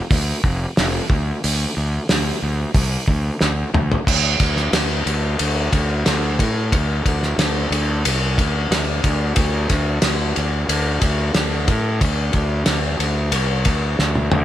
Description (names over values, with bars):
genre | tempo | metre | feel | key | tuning
classic rock | 91 BPM | 4/4 | straight | D minor | A4 = 440 Hz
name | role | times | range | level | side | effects
fuzz fingered electric bass | bass | 0.1-14.4 s | F1 to A2 | -20 LUFS | equal | overdrive
cloth-damped thuddy drum kit | drums | 0.1-14.4 s | crash cymbal, hi-hat, kick drum, ride cymbal, snare drum, toms | -19 LUFS | equal | none
room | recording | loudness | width
light reverb | none | -17 LUFS | side -12 dB against mid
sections
0.0-4.1 A section; 4.1-14.4 B section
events
drum fill 3.4-4.1, 14.0-14.4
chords
none